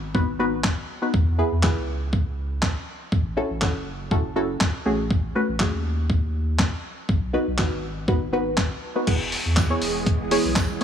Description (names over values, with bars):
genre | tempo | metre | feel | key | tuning
dance-pop | 121 BPM | 4/4 | straight | E major | A4 = 440 Hz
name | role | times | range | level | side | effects
warm sub bass | bass | 0.0-10.8 s | E1 to E2 | -27 LUFS | equal | sidechain pumping
soft round pluck | accompaniment | 0.1-10.8 s | A3 to C#5 | -25 LUFS | equal | chorus, phaser, sidechain pumping
dusty soul sampler-style drum kit | drums | 0.1-10.8 s | crash cymbal, handclaps, hi-hat, kick drum, snare drum | -23 LUFS | equal | none
soft string machine | sustained chords | 9.3-10.8 s | E3 to G#4 | -28 LUFS | right 2 dB | ensemble chorus, sidechain pumping
tambourine | percussion | 9.6-10.7 s | none | -39 LUFS | right 9 dB | none
room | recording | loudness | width
little or no reverb | small room ambience | -21 LUFS | side -8 dB against mid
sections
0.0-9.1 A section; 9.1-10.8 B section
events
none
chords
0.0 B; 1.1 E; 3.1 A6; 4.9 F#madd9/A; 7.1 B; 9.1 E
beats
0.15 0.64 | 1.14 1.63 2.13 2.63 | 3.12 3.62 4.11 4.61 | 5.11 5.60 6.10 6.59 | 7.09 7.58 8.08 8.58 | 9.07 9.57 10.06 10.56